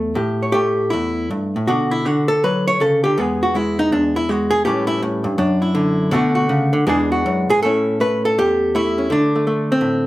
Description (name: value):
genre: solo jazz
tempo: 161 BPM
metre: 4/4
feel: swing 65% on 8ths, uneven beats, rubato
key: unclear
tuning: A4 = 441 Hz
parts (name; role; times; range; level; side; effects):
- hollow-body jazz guitar; solo; 0.0-10.1 s; E2 to C#5; -16 LUFS; equal; none
room: wet studio reverb, RT60 0.6 s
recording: heard from further back in the room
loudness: -16 LUFS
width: side -16 dB against mid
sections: 0.0-7.6 A section; 7.6-10.1 B section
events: hollow-body jazz guitar solo 0.0-7.6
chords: 0.0 A7; 1.7 Bm; 3.2 E; 4.6 A7; 5.4 Dadd9/F#; 6.1 Bm7; 6.8 E7; 7.6 A7; 9.1 D5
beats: | 0.14 0.52 0.90 1.29 | 1.68 2.06 2.43 2.81 | 3.18 3.54 3.91 4.28 | 4.64 5.01 5.37 5.74 | 6.10 6.47 6.85 7.23 | 7.61 7.99 8.37 8.73 | 9.10 9.46 9.81